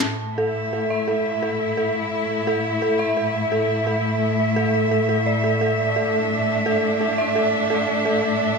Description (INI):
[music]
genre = drum and bass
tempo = 172 BPM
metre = 4/4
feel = swing 56% on 16ths, half-time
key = unclear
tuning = A4 = 440 Hz
[part]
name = warm studio cello section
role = sustained chords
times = 0.0-8.6 s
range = A2 to E5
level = -21 LUFS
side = equal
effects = none
[part]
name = dark detuned synth bell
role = arpeggios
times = 0.0-8.6 s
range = A4 to E5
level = -24 LUFS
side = right 1 dB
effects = chorus, low-pass filter, dub echo
[sound]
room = wet digital room reverb, RT60 1.0 s, digital ambience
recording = none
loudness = -19 LUFS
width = side -4 dB against mid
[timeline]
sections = 0.0-8.6 A section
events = none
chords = 0.0 A5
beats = | 0.03 0.38 0.73 1.08 | 1.43 1.77 2.12 2.47 | 2.82 3.17 3.52 3.87 | 4.22 4.56 4.91 5.26 | 5.61 5.96 6.31 6.66 | 7.01 7.36 7.70 8.05 | 8.40